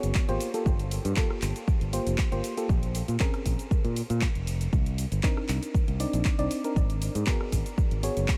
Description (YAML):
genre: deep house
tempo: 118 BPM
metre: 4/4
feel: swing 53% on 16ths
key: unclear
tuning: A4 = 441 Hz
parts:
  - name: mellow FM electric piano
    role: stabs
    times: 0.0-8.4 s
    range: Bb3 to D5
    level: -35 LUFS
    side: equal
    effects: chorus, sidechain pumping, delay
  - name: modern bright fingered electric bass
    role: bass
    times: 0.0-8.2 s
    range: F1 to Bb2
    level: -31 LUFS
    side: equal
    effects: sidechain pumping
  - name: deep house drum kit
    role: drums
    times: 0.0-8.4 s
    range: cabasa, handclaps, hi-hat, rim click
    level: -39 LUFS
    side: equal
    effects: studio ambience
  - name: electronic kick drum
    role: drums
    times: 0.2-8.4 s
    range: none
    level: -28 LUFS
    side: equal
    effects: studio ambience
room: light reverb, digital ambience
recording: vinyl crackle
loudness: -27 LUFS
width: mono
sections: 0.0-8.4 A section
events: none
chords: 0.4 Gm9; 2.7 Bbm9; 4.7 Cm9; 6.8 Abm9